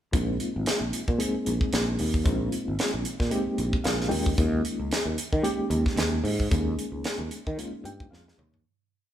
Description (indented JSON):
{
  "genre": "electric jazz fusion",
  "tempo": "113 BPM",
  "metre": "4/4",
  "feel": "swing 56% on 16ths",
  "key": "unclear",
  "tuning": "A4 = 441 Hz",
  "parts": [
    { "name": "reed electric piano", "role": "accompaniment", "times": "0.1-8.6 s", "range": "Ab3 to G5", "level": "-30 LUFS", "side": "left 1 dB", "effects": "fast tremolo" },
    { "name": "sustaining fretless electric bass", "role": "bass", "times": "0.1-8.6 s", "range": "Ab1 to Eb3", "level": "-28 LUFS", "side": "equal", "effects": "none" },
    { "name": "crisp fusion drum kit", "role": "drums", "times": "0.1-8.6 s", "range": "hi-hat, kick drum, snare drum, toms", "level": "-28 LUFS", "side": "equal", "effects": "none" }
  ],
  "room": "moderate large studio reverb, RT60 1.1 s",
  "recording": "band playing live in one room",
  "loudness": "-24 LUFS",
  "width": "side -11 dB against mid",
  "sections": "0.1-8.7 groove",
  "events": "reed electric piano fill 3.6-4.4, 7.6-8.7; fade-out 6.5-8.7; drum fill 8.1-8.7",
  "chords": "0.1 Bb9sus4; 4.1 Eb9sus4"
}